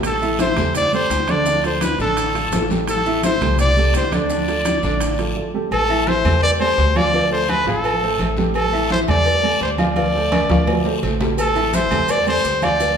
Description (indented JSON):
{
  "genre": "latin, salsa",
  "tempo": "169 BPM",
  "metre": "4/4",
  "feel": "straight",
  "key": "A minor",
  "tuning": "A4 = 440 Hz",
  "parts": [
    { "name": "dark upright piano", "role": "accompaniment", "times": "0.0-13.0 s", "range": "D3 to F5", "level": "-23 LUFS", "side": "right 3 dB", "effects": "none" },
    { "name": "upright bass", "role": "bass", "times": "0.0-13.0 s", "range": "A1 to E2", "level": "-23 LUFS", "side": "left 1 dB", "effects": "none" },
    { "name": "bongos and cowbell", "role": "percussion", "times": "0.0-13.0 s", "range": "none", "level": "-28 LUFS", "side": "left 5 dB", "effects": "none" },
    { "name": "congas", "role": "percussion", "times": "0.0-13.0 s", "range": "none", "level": "-26 LUFS", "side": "left 1 dB", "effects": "none" },
    { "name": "guiro", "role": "percussion", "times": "0.0-13.0 s", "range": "none", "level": "-33 LUFS", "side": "left 3 dB", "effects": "none" },
    { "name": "maracas", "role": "percussion", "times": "0.0-5.4, 11.4-13.0 s", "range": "none", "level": "-34 LUFS", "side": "right 4 dB", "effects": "none" },
    { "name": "timbales and agogo bells", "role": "percussion", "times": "0.0-13.0 s", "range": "none", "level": "-27 LUFS", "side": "right 2 dB", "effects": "none" },
    { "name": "clear trumpet", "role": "melody", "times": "0.1-13.0 s", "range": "A4 to D5", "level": "-19 LUFS", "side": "equal", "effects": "none" }
  ],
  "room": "wet large studio reverb, RT60 1.3 s",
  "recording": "band playing live in one room",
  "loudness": "-16 LUFS",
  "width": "side -7 dB against mid",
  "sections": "0.0-5.7 A section; 5.7-13.0 A section",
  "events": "break 5.4-5.7; drum fill 10.0-11.4",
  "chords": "0.0 Am7; 1.5 Dm; 2.9 Am7; 4.3 Dm; 5.7 Am7; 7.1 Dm7; 8.6 A5; 10.0 Dm7; 11.4 Am7",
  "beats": "| 0.04 0.39 0.75 1.10 | 1.46 1.81 2.17 2.52 | 2.88 3.23 3.59 3.94 | 4.30 4.66 5.01 5.36 | 5.72 6.07 6.43 6.78 | 7.14 7.49 7.84 8.20 | 8.55 8.91 9.26 9.62 | 9.97 10.32 10.68 11.03 | 11.39 11.74 12.09 12.45 | 12.80"
}